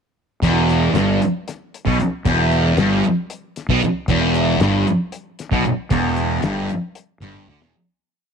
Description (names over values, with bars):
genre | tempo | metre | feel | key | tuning
psychedelic rock | 230 BPM (eighths) | 7/8 | straight | unclear | A4 = 439 Hz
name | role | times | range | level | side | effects
thick fuzz guitar | riff | 0.4-7.7 s | E2 to D3 | -17 LUFS | equal | distortion, phaser
fuzz fingered electric bass | bass | 0.4-7.7 s | E1 to D2 | -22 LUFS | equal | overdrive
cloth-damped thuddy drum kit | drums | 0.4-7.7 s | hi-hat, kick drum, snare drum, toms | -24 LUFS | left 3 dB | none
room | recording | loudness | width
small room ambience | 1960s-style stereo | -16 LUFS | side -6 dB against mid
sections
0.4-7.7 groove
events
fade-out 5.9-7.7; drum fill 7.3-7.7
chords
0.4 E5